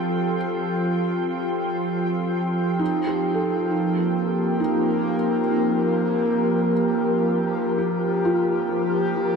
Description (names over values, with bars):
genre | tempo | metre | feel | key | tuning
ambient | 66 BPM | 3/4 | straight | unclear | A4 = 442 Hz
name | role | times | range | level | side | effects
airy breathy pad | sustained chords | 0.0-9.4 s | F3 to G5 | -23 LUFS | right 1 dB | chorus
felt-muted upright piano | arpeggios | 0.0-9.4 s | Eb4 to A4 | -28 LUFS | right 1 dB | tape echo
organ-like drone | drone | 0.0-9.4 s | F3 to C4 | -29 LUFS | right 2 dB | ensemble chorus, built-in reverb
wind-like tuned noise texture | texture | 0.0-9.4 s | Bb4 to C6 | -29 LUFS | left 4 dB | built-in reverb
room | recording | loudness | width
wet cathedral reverb, RT60 6.4 s | dark, warm production | -20 LUFS | side -5 dB against mid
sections
0.0-9.4 A section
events
fade-in on synth texture 0.0-9.4; filter sweep on analog synth pad 0.0-9.4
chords
0.0 F; 2.8 Eb/F